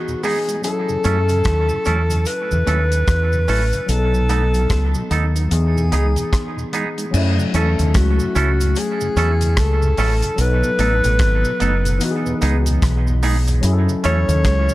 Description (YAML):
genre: lovers rock reggae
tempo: 74 BPM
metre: 4/4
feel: swing 61% on 16ths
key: F# dorian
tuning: A4 = 439 Hz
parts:
  - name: breathy alto saxophone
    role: melody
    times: 0.0-14.7 s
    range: F#4 to C#5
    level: -22 LUFS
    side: left 1 dB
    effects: tape echo
  - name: overdriven tine electric piano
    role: accompaniment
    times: 0.0-14.7 s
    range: E3 to A4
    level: -25 LUFS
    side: left 2 dB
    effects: phaser, dub echo
  - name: mellow tonewheel organ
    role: accompaniment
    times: 0.1-14.7 s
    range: E2 to E4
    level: -30 LUFS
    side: right 2 dB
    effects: none
  - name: cabasa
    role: percussion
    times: 0.1-14.7 s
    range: none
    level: -34 LUFS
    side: right 6 dB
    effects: none
  - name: twangy electric guitar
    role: stabs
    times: 0.2-14.2 s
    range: B3 to A4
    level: -26 LUFS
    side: right 4 dB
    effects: dub echo
  - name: damped 70s drum kit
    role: drums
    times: 0.2-14.7 s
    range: crash cymbal, hi-hat, kick drum, rim click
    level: -23 LUFS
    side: equal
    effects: none
  - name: deep dub fingered electric bass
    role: bass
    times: 1.1-14.7 s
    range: F#1 to F#2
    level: -17 LUFS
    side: equal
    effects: none
room: light reverb, small room reverb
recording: dark, warm production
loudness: -15 LUFS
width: side -17 dB against mid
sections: 0.0-7.1 A section; 7.1-14.7 B section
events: none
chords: 0.0 Emaj7; 0.6 F#m7; 3.9 B7; 5.5 Emaj7; 7.1 F#m7; 10.4 B7; 12.0 Emaj7; 13.6 F#m7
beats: | 0.64 1.46 2.27 3.08 | 3.89 4.70 5.51 6.33 | 7.14 7.95 8.76 9.57 | 10.39 11.20 12.01 12.82 | 13.63 14.45